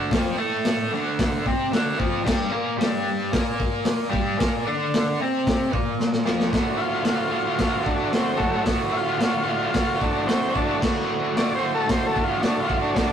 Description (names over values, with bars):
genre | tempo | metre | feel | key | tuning
garage rock duo or trio | 112 BPM | 4/4 | straight | D major from 6.5 s | A4 = 442 Hz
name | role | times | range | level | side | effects
biting overdriven guitar | riff | 0.0-13.1 s | D2 to F#4 | -24 LUFS | right 1 dB | harmonic tremolo
crunchy breakbeat drum kit | drums | 0.1-13.1 s | crash cymbal, hi-hat, kick drum, snare drum | -24 LUFS | equal | none
overdriven combo organ | melody | 6.8-13.1 s | F#3 to D5 | -26 LUFS | left 2 dB | none
room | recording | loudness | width
moderate booth ambience, RT60 0.2 s | rough rehearsal-room recording, warm saturation | -20 LUFS | side -8 dB against mid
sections
0.0-6.5 A section; 6.5-13.1 B section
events
drum fill 6.0-6.5; transistor combo organ solo 6.5-13.1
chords
0.0 D5; 2.3 G5; 6.5 D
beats
| 0.10 0.64 1.18 1.72 | 2.25 2.79 3.33 3.86 | 4.40 4.93 5.47 6.00 | 6.54 7.07 7.61 8.14 | 8.68 9.21 9.75 10.29 | 10.82 11.36 11.89 12.43 | 12.96